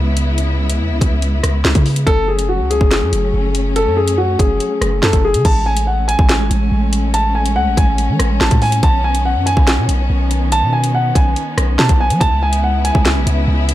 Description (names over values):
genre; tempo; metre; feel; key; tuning
hip hop, drill; 142 BPM; 4/4; half-time; unclear; A4 = 440 Hz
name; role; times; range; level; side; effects
warm symphonic string section; sustained chords; 0.0-13.7 s; C#3 to E4; -22 LUFS; left 1 dB; none
long sustained 808-style bass; bass; 0.0-13.7 s; F#1 to F#3; -16 LUFS; equal; none
drill drum kit; drums; 0.2-13.7 s; crash cymbal, hi-hat, kick drum, rim click, snare drum; -16 LUFS; equal; none
dark baby grand piano; melody; 2.1-13.7 s; F#4 to A5; -18 LUFS; equal; ping-pong delay
room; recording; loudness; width
little or no reverb; none; -12 LUFS; side -14 dB against mid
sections
0.0-5.4 A section; 5.4-13.7 B section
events
break 0.0-2.1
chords
0.0 C#m7; 2.1 F#m; 5.4 Amaj7; 8.8 Badd9; 12.2 C#m7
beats
| 0.38 0.80 1.22 1.65 | 2.07 2.49 2.91 3.34 | 3.76 4.18 4.60 5.03 | 5.45 5.87 6.29 6.72 | 7.14 7.56 7.98 8.41 | 8.83 9.25 9.67 10.10 | 10.52 10.94 11.37 11.79 | 12.21 12.63 13.05 13.48